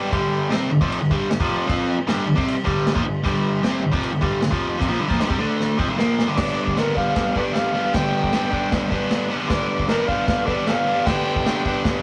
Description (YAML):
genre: garage rock duo or trio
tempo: 153 BPM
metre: 4/4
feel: straight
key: G mixolydian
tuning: A4 = 440 Hz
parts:
  - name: biting overdriven guitar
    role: riff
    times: 0.0-12.0 s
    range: F2 to G4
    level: -23 LUFS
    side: equal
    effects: none
  - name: vintage drum kit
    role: drums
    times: 0.1-11.9 s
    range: crash cymbal, kick drum, snare drum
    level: -27 LUFS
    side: equal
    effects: vintage 12-bit sampler grit
  - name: overdriven harmonica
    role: melody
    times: 6.4-11.8 s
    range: A4 to G5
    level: -26 LUFS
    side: equal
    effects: none
room: wet booth ambience, RT60 0.2 s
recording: rough rehearsal-room recording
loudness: -21 LUFS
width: mono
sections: 0.1-6.4 A section; 6.4-12.0 B section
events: drum fill 5.6-6.4; harmonica solo 6.4-12.0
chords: 0.1 G5; 5.4 D5; 5.8 G5; 6.4 G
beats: | 0.12 0.51 0.90 1.29 | 1.68 2.08 2.47 2.86 | 3.25 3.64 4.03 4.42 | 4.81 5.20 5.59 5.99 | 6.38 6.77 7.16 7.55 | 7.94 8.34 8.73 9.12 | 9.51 9.90 10.29 10.68 | 11.07 11.46 11.85